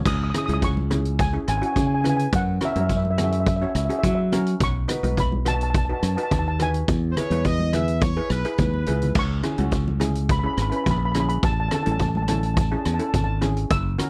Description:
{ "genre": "calypso", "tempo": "106 BPM", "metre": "4/4", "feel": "straight", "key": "unclear", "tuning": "A4 = 440 Hz", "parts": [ { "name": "steel pan", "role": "accompaniment", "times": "0.0-14.1 s", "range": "C#4 to C#5", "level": "-32 LUFS", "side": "equal", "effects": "none" }, { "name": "modern bright fingered electric bass", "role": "bass", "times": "0.0-14.0 s", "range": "F#1 to F#3", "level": "-26 LUFS", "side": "equal", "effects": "none" }, { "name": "steel pan", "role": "melody", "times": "0.1-14.1 s", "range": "E5 to E6", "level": "-30 LUFS", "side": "equal", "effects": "none" }, { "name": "street-band drum kit", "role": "drums", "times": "0.1-14.1 s", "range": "crash cymbal, hi-hat, kick drum, rim click", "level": "-28 LUFS", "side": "equal", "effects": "none" }, { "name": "congas", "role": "percussion", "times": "0.3-14.1 s", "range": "none", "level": "-33 LUFS", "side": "equal", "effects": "none" }, { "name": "bright horn section", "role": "second line", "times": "7.1-9.1 s", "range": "B4 to E5", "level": "-32 LUFS", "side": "equal", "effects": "none" } ], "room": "little or no reverb", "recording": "dry, close 1970s-style studio recording", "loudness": "-23 LUFS", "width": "mono", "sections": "0.0-9.2 A section; 9.2-14.1 A section", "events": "drum fill 8.7-9.2", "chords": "0.1 C#m; 2.3 F#; 4.6 B; 6.9 E; 9.2 C#m7; 11.4 A", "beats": "| 0.06 0.63 1.20 1.77 | 2.33 2.90 3.47 4.04 | 4.61 5.18 5.75 6.32 | 6.88 7.45 8.02 8.59 | 9.16 9.73 10.29 10.86 | 11.43 12.00 12.57 13.14 | 13.70" }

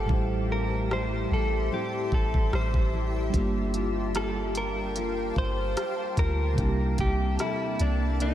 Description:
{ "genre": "contemporary R&B", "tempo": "74 BPM", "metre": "4/4", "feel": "swing 54% on 16ths", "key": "G dorian", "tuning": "A4 = 436 Hz", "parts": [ { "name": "direct-recorded clean electric guitar", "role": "melody", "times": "0.0-8.3 s", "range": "D4 to C5", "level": "-32 LUFS", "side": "equal", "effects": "wide subtle chorus, diffuse ambient delay" }, { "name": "mellow tine electric piano", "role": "accompaniment", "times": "0.0-8.3 s", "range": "A2 to C5", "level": "-34 LUFS", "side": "right 3 dB", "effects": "medium stereo tremolo" }, { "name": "granular cloud pad", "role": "sustained chords", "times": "0.0-8.3 s", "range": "Bb3 to D6", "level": "-34 LUFS", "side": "equal", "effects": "built-in reverb, analog chorus" }, { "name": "nylon-string guitar", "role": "arpeggios", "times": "0.0-8.3 s", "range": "A2 to A4", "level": "-36 LUFS", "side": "left 4 dB", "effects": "wide subtle chorus, diffuse ambient delay" }, { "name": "soft 808-style bass", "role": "bass", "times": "0.0-8.3 s", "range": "G1 to D2", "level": "-28 LUFS", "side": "equal", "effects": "none" }, { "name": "smooth R&B drum kit", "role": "drums", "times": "0.1-8.3 s", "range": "hi-hat, kick drum, rim click", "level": "-30 LUFS", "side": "equal", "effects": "none" } ], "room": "moderate lush hall reverb, RT60 3.1 s", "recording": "dreamy mix soaked in reverb, faint mains hum", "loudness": "-25 LUFS", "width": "side -12 dB against mid", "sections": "0.0-8.3 A section", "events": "break 0.0-3.3", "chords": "0.1 Am7; 3.3 Gm9; 6.6 C13", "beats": "| 0.09 0.91 1.72 2.53 | 3.34 4.15 4.96 5.77 | 6.58 7.39 8.20" }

